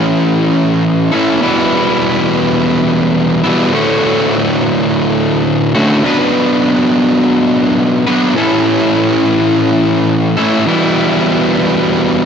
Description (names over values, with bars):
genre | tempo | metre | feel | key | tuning
rock | 104 BPM | 4/4 | straight | D major | A4 = 440 Hz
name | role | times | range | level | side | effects
fuzz guitar | solo | 0.0-12.3 s | D2 to B4 | -10 LUFS | equal | distortion, tape echo
room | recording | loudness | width
light reverb | nothing above 8.0 kHz | -10 LUFS | side -7 dB against mid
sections
0.0-3.7 A section; 3.7-12.3 A section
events
none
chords
0.0 A; 1.4 Em; 3.7 Dmaj7; 6.0 Bm; 8.4 A; 10.7 Em